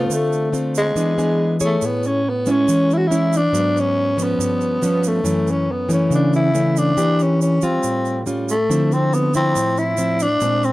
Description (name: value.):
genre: bossa nova.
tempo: 140 BPM.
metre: 4/4.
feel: straight.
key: unclear.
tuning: A4 = 442 Hz.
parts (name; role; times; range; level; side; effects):
growling tenor saxophone; melody; 0.0-10.7 s; Ab3 to F#4; -19 LUFS; equal; none.
nylon-string guitar; accompaniment; 0.0-10.7 s; F#2 to Db5; -19 LUFS; equal; none.
tube shaker; percussion; 0.1-10.7 s; none; -32 LUFS; right 9 dB; none.
room: light reverb.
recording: dark, warm production.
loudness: -16 LUFS.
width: side -17 dB against mid.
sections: 0.0-1.8 A section; 1.8-10.7 B section.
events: none.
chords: 0.1 Dm7; 0.9 E7; 1.8 Amaj7; 3.5 Bm69/G#; 4.4 G7#11; 5.2 F#m7; 7.0 Em7b5; 7.8 A7alt; 8.7 Dm9.